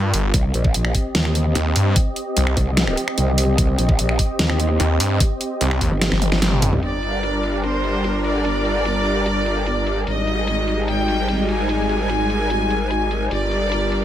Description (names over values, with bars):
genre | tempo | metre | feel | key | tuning
heavy wobble dubstep | 148 BPM | 4/4 | half-time | G phrygian | A4 = 440 Hz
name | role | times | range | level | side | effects
supersaw pad | sustained chords | 0.0-14.0 s | G3 to Eb5 | -24 LUFS | equal | sidechain pumping, low-pass filter
snarling distorted saw bass | bass | 0.0-6.7 s | G1 to G2 | -18 LUFS | equal | distortion, overdrive
dubstep drum kit | drums | 0.1-14.0 s | finger snaps, hi-hat, snare drum, toms | -22 LUFS | equal | low-pass filter on hats, small room ambience, low-pass filter on cymbals, low-pass filter on snare, low-pass filter on toms
growl bass | bass | 0.3-14.0 s | G1 to Eb2 | -21 LUFS | equal | chorus, overdrive
electronic kick drum | drums | 0.3-5.9 s | none | -19 LUFS | equal | small room ambience
rich chamber violin section | melody | 6.8-14.0 s | C5 to Ab5 | -23 LUFS | left 1 dB | digital delay
room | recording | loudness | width
light reverb, digital ambience | none | -17 LUFS | side -11 dB against mid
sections
0.0-6.8 A section; 6.8-14.0 B section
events
drop 0.0-6.8; drum fill 6.0-6.8; band accent 6.4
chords
0.3 Cm; 6.8 Gm; 10.1 Ebadd11/Ab; 13.3 Gm